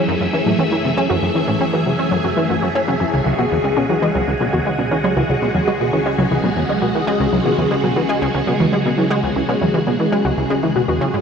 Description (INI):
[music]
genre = ambient, sequencer-driven space music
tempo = 118 BPM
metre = 4/4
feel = straight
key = unclear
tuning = A4 = 439 Hz
[part]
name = phased string machine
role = sustained chords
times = 0.0-11.2 s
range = C#2 to E5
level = -19 LUFS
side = equal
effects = ensemble chorus, phaser
[part]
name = plucky analog bass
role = riff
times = 0.0-11.2 s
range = C#2 to C#4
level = -20 LUFS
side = equal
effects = ensemble chorus, tape echo
[part]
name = wide unison pluck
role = arpeggios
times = 0.2-11.1 s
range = E3 to F#4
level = -22 LUFS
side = moving between left 4 dB and right 2 dB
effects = auto-pan, tape echo
[sound]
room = wet huge ambient reverb, RT60 7.6 s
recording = none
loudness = -15 LUFS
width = side -6 dB against mid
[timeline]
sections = 0.0-11.2 A section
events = none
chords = 0.0 F#m7; 3.1 C#sus4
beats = 0.08 0.59 | 1.10 1.61 2.12 2.62 | 3.13 3.64 4.15 4.66 | 5.17 5.67 6.18 6.69 | 7.20 7.71 8.22 8.72 | 9.23 9.74 10.25 10.76